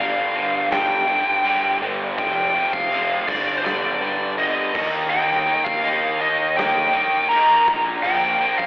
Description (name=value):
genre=quiet-loud alternative rock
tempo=82 BPM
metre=4/4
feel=straight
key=G minor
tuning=A4 = 440 Hz
part: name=biting lead guitar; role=melody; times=0.0-8.7 s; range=C5 to Bb5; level=-19 LUFS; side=equal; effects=overdrive, tape echo
part: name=crunchy overdriven guitar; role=riff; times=0.0-8.7 s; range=F2 to Eb4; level=-24 LUFS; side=equal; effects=slapback echo
part: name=fuzz picked electric bass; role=bass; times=0.0-8.7 s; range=F1 to Eb2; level=-29 LUFS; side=equal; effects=overdrive
part: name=huge arena drum kit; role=drums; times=0.7-8.7 s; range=crash cymbal, kick drum, snare drum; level=-28 LUFS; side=equal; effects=none
room=studio ambience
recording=live gig heard through the venue's PA, recital hall reverb, telephone sound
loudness=-17 LUFS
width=side -22 dB against mid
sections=0.0-8.7 A section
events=none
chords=0.0 G5; 2.2 F5; 3.3 G5; 4.7 Eb; 7.7 Bb5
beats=0.72 1.45 | 2.18 2.91 3.65 4.38 | 5.11 5.84 6.58 7.31 | 8.04